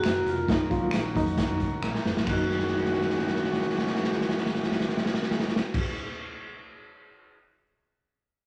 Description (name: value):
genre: uptempo 1960s-style soul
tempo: 134 BPM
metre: 4/4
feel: straight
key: F# major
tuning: A4 = 441 Hz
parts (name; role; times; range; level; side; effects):
- vibraphone with medium hard mallets; melody; 0.0-5.8 s; D#4 to F#4; -33 LUFS; equal; none
- warm brass ensemble; sustained chords; 0.0-5.8 s; B2 to A#4; -37 LUFS; equal; none
- vintage muted fingered electric bass; bass; 0.0-5.8 s; E#1 to F#2; -39 LUFS; equal; none
- raw garage drum kit; drums; 0.0-7.3 s; crash cymbal, hi-hat, kick drum, snare drum; -30 LUFS; equal; none
- finger snap; percussion; 0.0-5.8 s; none; -40 LUFS; equal; none
- reed electric piano; accompaniment; 0.5-5.8 s; F#3 to E#4; -35 LUFS; equal; fast tremolo
room: moderate large studio reverb, RT60 0.8 s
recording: none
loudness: -27 LUFS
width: mono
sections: 0.0-2.3 A section; 2.3-5.9 B section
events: drum fill 1.8-2.3, 2.5-5.7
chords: 0.5 F#6